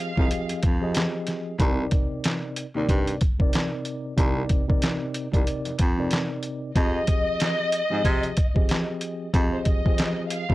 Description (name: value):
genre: hip hop, boom-bap hip-hop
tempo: 93 BPM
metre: 4/4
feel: swing 59% on 16ths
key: C minor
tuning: A4 = 440 Hz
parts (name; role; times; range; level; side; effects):
- warm symphonic violin section; melody; 0.0-0.5, 6.8-10.5 s; C5 to F5; -28 LUFS; left 1 dB; high-pass filter, low-pass filter, tape echo
- mellow tine electric piano; accompaniment; 0.0-10.5 s; C3 to Eb5; -29 LUFS; equal; medium stereo tremolo, cassette tape, high-pass filter, low-pass filter
- breathy baritone saxophone; bass; 0.2-10.5 s; C2 to C3; -27 LUFS; equal; tube saturation
- trip hop sampler-style drum kit; drums; 0.2-10.5 s; handclaps, hi-hat, kick drum, snare drum; -23 LUFS; equal; overdrive
room: little or no reverb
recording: dry, gritty hardware recording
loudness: -22 LUFS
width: side -17 dB against mid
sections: 0.0-10.5 A section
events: none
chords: 0.0 Fm7; 1.6 Cm7; 6.8 Fm7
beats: 0.31 0.95 | 1.60 2.24 2.89 3.53 | 4.18 4.82 5.47 6.11 | 6.76 7.40 8.05 8.69 | 9.34 9.98